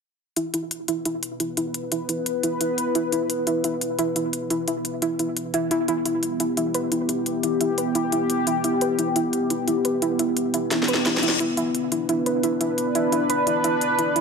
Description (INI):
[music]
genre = dark technical drum and bass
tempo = 174 BPM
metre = 4/4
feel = straight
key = E minor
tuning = A4 = 442 Hz
[part]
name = sweeping resonant pad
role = sustained chords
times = 0.4-14.2 s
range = B3 to B4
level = -24 LUFS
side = equal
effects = chorus
[part]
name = soft round pluck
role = arpeggios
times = 0.4-14.2 s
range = E4 to B4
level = -25 LUFS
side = right 1 dB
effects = chorus, tape echo
[part]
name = drum and bass drum kit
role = drums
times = 0.4-14.2 s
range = hi-hat, snare drum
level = -26 LUFS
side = left 1 dB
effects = small room ambience
[part]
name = reverse cymbal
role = sound effects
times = 10.8-11.4 s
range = none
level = -28 LUFS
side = left 7 dB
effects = none
[sound]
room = moderate lush hall reverb, RT60 2.1 s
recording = none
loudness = -21 LUFS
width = side -5 dB against mid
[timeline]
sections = 0.4-14.2 A section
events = filter sweep on analog synth pad 0.4-14.2; filter sweep on synth pluck 0.4-14.2; drum fill 10.7-11.4; reverse cymbal 10.8-11.4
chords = 0.4 E5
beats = | 0.37 0.71 1.06 1.40 | 1.75 2.09 2.44 2.78 | 3.12 3.47 3.81 4.16 | 4.50 4.85 5.19 5.54 | 5.88 6.23 6.57 6.92 | 7.26 7.61 7.95 8.30 | 8.64 8.99 9.33 9.68 | 10.02 10.37 10.71 11.06 | 11.40 11.74 12.09 12.44 | 12.78 13.12 13.47 13.81 | 14.16